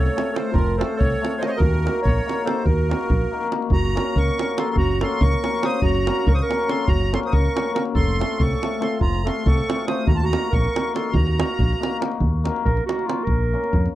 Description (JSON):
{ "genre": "balkan folk, Balkan wedding band", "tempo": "283 BPM (eighths)", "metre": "5/8", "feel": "straight", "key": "unclear", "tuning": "A4 = 442 Hz", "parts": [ { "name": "accordion", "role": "melody", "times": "0.0-12.0 s", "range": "Bb4 to Eb6", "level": "-28 LUFS", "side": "right 1 dB", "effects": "light tremolo tuning" }, { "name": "clear clarinet", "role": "second line", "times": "0.0-13.9 s", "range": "F4 to C5", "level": "-27 LUFS", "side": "right 5 dB", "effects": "none" }, { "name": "fingered electric bass", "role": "bass", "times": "0.0-13.9 s", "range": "F1 to F2", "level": "-22 LUFS", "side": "equal", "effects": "none" }, { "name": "davul", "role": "percussion", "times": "0.1-13.9 s", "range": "none", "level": "-23 LUFS", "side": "right 1 dB", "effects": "none" }, { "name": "cimbalom", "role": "accompaniment", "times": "0.2-13.7 s", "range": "A3 to Bb4", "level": "-26 LUFS", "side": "left 7 dB", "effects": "none" } ], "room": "little or no reverb", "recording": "dry, close 1970s-style studio recording", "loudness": "-18 LUFS", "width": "side -14 dB against mid", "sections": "0.0-3.7 A section; 3.7-12.2 A section; 12.2-13.9 B section", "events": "clarinet solo 12.2-13.9", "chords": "0.0 F; 1.6 Ebm; 3.7 Gb; 7.9 F; 10.1 Ebm; 13.3 Bbm" }